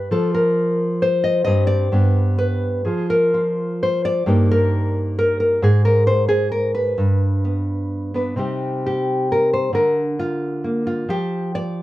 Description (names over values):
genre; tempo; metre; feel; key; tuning
folk, solo fingerstyle acoustic guitar; 132 BPM; 3/4; rubato; C minor; A4 = 440 Hz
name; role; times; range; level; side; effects
nylon-string guitar; solo; 0.0-11.8 s; G2 to Eb5; -17 LUFS; equal; none
room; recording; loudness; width
moderate studio ambience, RT60 0.5 s; worn, warbling old tape, cassette tape, warbly pitch drift; -17 LUFS; side -16 dB against mid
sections
0.0-8.4 A section; 8.4-11.8 B section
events
none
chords
0.0 N.C.; 1.5 Cm/G; 1.9 G; 2.9 N.C.; 4.3 Eb/G; 5.6 N.C.; 7.0 G; 8.4 Cm; 9.7 Bb/D; 11.1 N.C.